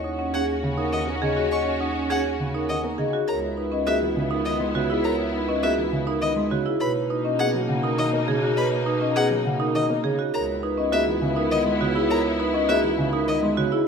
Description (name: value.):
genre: classical, minimalist pattern music.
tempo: 102 BPM.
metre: 3/4.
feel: straight.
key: unclear.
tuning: A4 = 440 Hz.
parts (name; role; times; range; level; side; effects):
vibraphone with soft mallets; melody; 0.0-13.9 s; G#4 to F#5; -27 LUFS; left 8 dB; none.
clear studio string section; sustained chords; 0.0-13.7 s; A#3 to F#4; -30 LUFS; left 1 dB; none.
marimba with medium hard mallets; arpeggios; 0.0-13.9 s; C#4 to C#5; -26 LUFS; right 8 dB; none.
mellow bass clarinet; bass; 0.0-13.7 s; C#2 to B2; -30 LUFS; left 1 dB; none.
dark baby grand piano; accompaniment; 0.3-13.8 s; C#3 to C#4; -29 LUFS; right 1 dB; none.
clear violin; arpeggios; 0.3-13.4 s; D#5 to C#6; -31 LUFS; left 2 dB; none.
room: moderate scoring stage reverb, RT60 1.6 s.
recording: minimal, uncompressed stereo recording.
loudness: -21 LUFS.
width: side -6 dB against mid.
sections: 0.0-13.9 A section.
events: none.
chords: 0.0 D#m7; 3.3 C#m11; 6.8 Bmaj9; 10.3 C#m11.